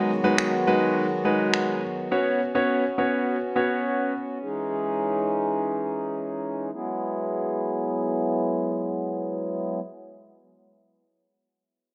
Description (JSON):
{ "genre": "dance-pop", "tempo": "104 BPM", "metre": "4/4", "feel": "straight", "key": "E major", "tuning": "A4 = 439 Hz", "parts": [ { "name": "warm concert grand piano", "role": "accompaniment", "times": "0.0-4.1 s", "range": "G#3 to C#5", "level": "-26 LUFS", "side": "equal", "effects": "none" }, { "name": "pedal harmonium", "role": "sustained chords", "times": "0.0-9.8 s", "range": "D#3 to G#4", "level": "-28 LUFS", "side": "equal", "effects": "none" }, { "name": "electronic finger snaps", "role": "drums", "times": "0.4-1.7 s", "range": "none", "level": "-30 LUFS", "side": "equal", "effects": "none" } ], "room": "moderate plate reverb, RT60 2.3 s", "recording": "low-pass filter", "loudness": "-26 LUFS", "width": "mono", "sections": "0.0-6.7 A section; 6.7-9.0 B section", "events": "filter sweep 0.0-6.7", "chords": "0.0 G#m7; 2.1 Bsus2; 4.4 C#madd9; 6.7 Eadd9", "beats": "0.39 0.96 1.54 | 2.12 2.69 3.27 3.85 | 4.42 5.00 5.58 6.15 | 6.73 7.31 7.88 8.46" }